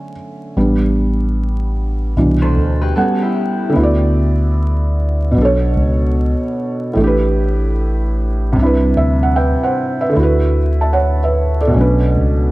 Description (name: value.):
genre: lo-fi hip hop.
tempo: 75 BPM.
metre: 4/4.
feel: swing 64% on 16ths.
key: D major.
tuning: A4 = 440 Hz.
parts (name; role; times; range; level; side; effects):
felt-muted upright piano; accompaniment; 0.0-12.5 s; A2 to A5; -16 LUFS; right 1 dB; cassette tape.
mellow tine electric piano; bass; 0.6-12.5 s; A1 to D2; -15 LUFS; equal; none.
electric guitar through a small old amp; second line; 2.4-3.7 s; E4 to C5; -24 LUFS; left 2 dB; phaser, analog delay.
room: light reverb, studio reverb.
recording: dark, warm production, vinyl crackle.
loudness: -13 LUFS.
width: side -19 dB against mid.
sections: 0.0-3.8 A section; 3.8-12.5 A section.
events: break 0.0-0.6; felt piano solo 0.0-3.8.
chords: 0.0 Aadd11/D; 0.6 A9sus4; 2.2 Cmaj9; 3.0 A13/G; 3.8 D69; 5.4 Bm9; 7.0 A9sus4; 8.6 Cmaj9; 10.2 D69; 11.8 Bm9.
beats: | 0.56 1.36 2.16 2.96 | 3.76 4.56 5.36 6.16 | 6.96 7.76 8.56 9.36 | 10.16 10.96 11.76.